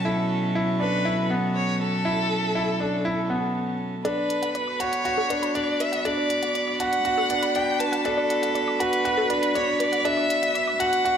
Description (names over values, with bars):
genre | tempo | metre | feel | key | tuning
piano and strings electronica | 120 BPM | 4/4 | straight | B minor | A4 = 440 Hz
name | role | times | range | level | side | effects
rich violin | melody | 0.0-11.2 s | A4 to A5 | -26 LUFS | equal | none
warm string quartet | sustained chords | 0.0-11.2 s | B2 to B4 | -27 LUFS | right 1 dB | none
bright concert grand piano | riff | 0.0-11.2 s | B3 to F#4 | -26 LUFS | left 1 dB | ping-pong delay
wide unison pluck | arpeggios | 4.0-11.1 s | A4 to D6 | -33 LUFS | left 1 dB | ping-pong delay
electronic hi-hat | drums | 4.1-11.2 s | none | -37 LUFS | right 1 dB | none
room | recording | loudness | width
wet recital hall reverb, RT60 1.3 s, studio reverb | none | -22 LUFS | side -8 dB against mid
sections
0.0-4.1 A section; 4.1-11.2 B section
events
build-up 4.1-11.2; filter sweep on synth arpeggio sound 4.1-11.2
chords
0.0 F#m7/B; 4.1 Bm7